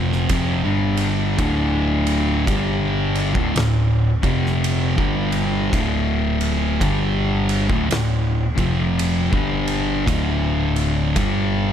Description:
stoner and doom metal; 55 BPM; 4/4; swing 62% on 8ths; D minor; A4 = 441 Hz
thick fuzz guitar; riff; 0.0-11.7 s; D2 to G3; -22 LUFS; left 8 dB; distortion
thick fuzz guitar; riff; 0.0-11.7 s; D2 to G3; -22 LUFS; right 7 dB; distortion
overdriven picked electric bass; bass; 0.0-11.7 s; D1 to G1; -24 LUFS; equal
oversized low-tuned drum kit; drums; 0.1-11.5 s; kick drum, ride cymbal, snare drum; -26 LUFS; equal
light reverb, small room ambience; dark, warm production; -17 LUFS; side -9 dB against mid
0.0-11.7 A section
0.0 Dm
0.29 | 1.38 2.46 3.55 4.63 | 5.72 6.81 7.89 8.98 | 10.07 11.15

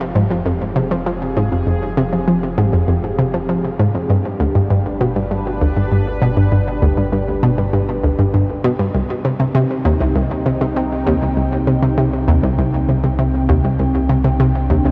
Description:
ambient, sequencer-driven space music; 99 BPM; 4/4; straight; C harmonic minor; A4 = 441 Hz
sweeping resonant pad; sustained chords; 0.0-14.9 s; C3 to G5; -24 LUFS; equal; chorus
round analog bass; bass; 0.0-14.9 s; F1 to C2; -28 LUFS; equal
analog pluck; riff; 0.2-14.9 s; C2 to F3; -18 LUFS; equal; chorus, delay
wet huge ambient reverb, RT60 7.3 s; worn, warbling old tape, cassette tape, warbly pitch drift; -17 LUFS; mono
0.0-14.9 A section
fade-in on analog synth pad 0.0-14.9; fade-in on analog synth bass 0.0-14.9
0.0 Fmadd9; 4.1 G; 8.9 Cm
0.46 1.07 | 1.67 2.28 2.88 3.49 | 4.10 4.70 5.31 5.91 | 6.52 7.13 7.73 8.34 | 8.94 9.55 10.16 10.76 | 11.37 11.97 12.58 13.19 | 13.79 14.40

